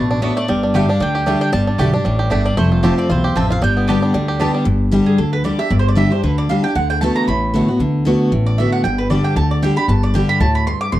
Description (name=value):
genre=bluegrass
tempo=230 BPM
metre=4/4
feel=swing 55% on 8ths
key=G mixolydian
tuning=A4 = 441 Hz
part: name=mandolin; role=melody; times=0.0-4.4 s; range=C5 to A5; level=-26 LUFS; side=right 1 dB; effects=none
part: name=picked steel-string acoustic guitar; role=accompaniment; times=0.0-11.0 s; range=E2 to G4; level=-17 LUFS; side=left 1 dB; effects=none
part: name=bluegrass banjo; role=arpeggios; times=0.0-4.7 s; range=G3 to G4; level=-22 LUFS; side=right 2 dB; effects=none
part: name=upright bass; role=bass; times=0.0-11.0 s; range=F1 to D2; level=-19 LUFS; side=equal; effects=none
part: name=mandolin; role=stabs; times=0.2-11.0 s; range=A3 to D6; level=-22 LUFS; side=right 3 dB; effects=none
room=studio ambience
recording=dry, close 1970s-style studio recording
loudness=-14 LUFS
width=side -14 dB against mid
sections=0.0-4.7 A section; 4.7-11.0 B section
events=mandolin solo 4.7-11.0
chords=0.5 Gsus2; 2.6 F; 3.6 Gadd9; 4.7 G5; 6.8 D6; 8.8 Gsus2